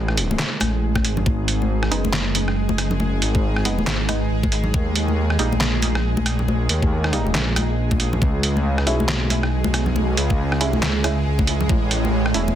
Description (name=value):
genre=deep dubstep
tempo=138 BPM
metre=4/4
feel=swing 59% on 16ths, half-time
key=G# minor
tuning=A4 = 443 Hz
part: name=bowed-like drone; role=sustained chords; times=0.0-12.6 s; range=G#3 to G#4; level=-27 LUFS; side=right 4 dB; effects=built-in reverb
part: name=dark detuned saw bass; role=bass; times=0.0-12.6 s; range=E1 to D#2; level=-21 LUFS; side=equal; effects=tube saturation
part: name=trip hop sampler-style drum kit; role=drums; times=0.1-12.4 s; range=handclaps, hi-hat, rim click, snare drum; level=-24 LUFS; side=right 1 dB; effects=none
part: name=congas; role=percussion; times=0.3-12.5 s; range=none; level=-27 LUFS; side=left 4 dB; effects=dub echo
part: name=electronic kick drum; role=drums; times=1.0-11.8 s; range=none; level=-21 LUFS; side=equal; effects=none
part: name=filtered dub chord stab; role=stabs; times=1.9-12.5 s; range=G3 to E4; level=-29 LUFS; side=right 1 dB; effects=chorus, dub echo
room=little or no reverb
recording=dense, heavily limited modern master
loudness=-18 LUFS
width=side -11 dB against mid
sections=0.0-12.6 A section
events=none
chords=0.0 A5; 1.3 G#m; 4.7 D#; 8.2 C#m; 11.7 A